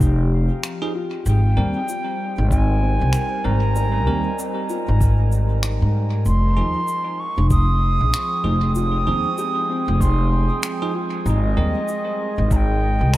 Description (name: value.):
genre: ambient dub.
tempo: 96 BPM.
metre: 4/4.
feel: swing 59% on 16ths.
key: F minor.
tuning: A4 = 440 Hz.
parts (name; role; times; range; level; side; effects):
warbly tape-like pad; sustained chords; 0.0-13.2 s; F3 to G5; -30 LUFS; right 1 dB; chorus, built-in reverb.
felt-muted upright piano; arpeggios; 0.0-13.2 s; G3 to C6; -33 LUFS; left 3 dB; dub echo.
upright bass; bass; 0.0-13.1 s; F1 to Ab2; -18 LUFS; equal; none.
electronic kick drum; drums; 0.0-12.7 s; none; -19 LUFS; equal; none.
shaker and finger snaps; drums; 0.0-13.2 s; none; -30 LUFS; equal; dub echo.
bell-like tine electric piano; stabs; 0.8-11.8 s; F3 to Bb4; -31 LUFS; right 3 dB; phaser, dub echo.
mellow wooden flute; melody; 1.3-13.2 s; Eb5 to Eb6; -25 LUFS; right 1 dB; vintage 12-bit sampler grit, dub echo.
drifting glass-harmonics texture; texture; 6.9-13.2 s; Ab3 to Ab4; -34 LUFS; right 3 dB; chorus, built-in reverb.
room: small room ambience.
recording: none.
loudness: -18 LUFS.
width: side -16 dB against mid.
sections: 0.0-13.2 A section.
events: none.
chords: 0.0 F5; 1.3 Abmaj9; 6.3 Fm7; 11.3 Abmaj9.